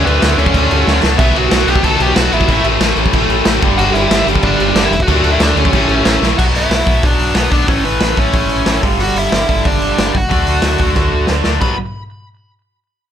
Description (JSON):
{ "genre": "punk rock", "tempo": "184 BPM", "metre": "4/4", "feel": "straight", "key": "B minor", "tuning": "A4 = 440 Hz", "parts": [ { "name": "dark smooth lead guitar", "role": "melody", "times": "0.0-11.8 s", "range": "B3 to B5", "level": "-18 LUFS", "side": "equal", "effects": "overdrive, digital delay" }, { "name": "heavy high-gain guitar", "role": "riff", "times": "0.0-6.4 s", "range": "G2 to E4", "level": "-21 LUFS", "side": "left 1 dB", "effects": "distortion" }, { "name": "overdriven electric guitar", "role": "riff", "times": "0.0-11.8 s", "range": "G2 to D4", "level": "-20 LUFS", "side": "right 14 dB", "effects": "none" }, { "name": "tight distorted guitar", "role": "riff", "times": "0.0-11.7 s", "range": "G2 to D4", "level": "-19 LUFS", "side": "left 16 dB", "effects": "distortion" }, { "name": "metallic FM bass", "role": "bass", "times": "0.0-11.8 s", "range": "E1 to D2", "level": "-18 LUFS", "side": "equal", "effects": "none" }, { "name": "raw garage drum kit", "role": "drums", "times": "0.1-11.7 s", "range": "crash cymbal, hi-hat, kick drum, snare drum", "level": "-16 LUFS", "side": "equal", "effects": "none" } ], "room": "little or no reverb", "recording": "none", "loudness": "-11 LUFS", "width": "side -9 dB against mid", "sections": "0.0-6.4 A section; 6.4-11.6 B section; 11.6-12.9 C section", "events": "drum fill 0.9-1.2, 6.2, 11.0-11.6", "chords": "0.0 D; 1.2 Bm; 2.5 A; 3.6 G; 5.1 D; 5.7 A; 6.4 Bm; 7.7 A; 8.8 G5; 10.3 D; 11.6 B5" }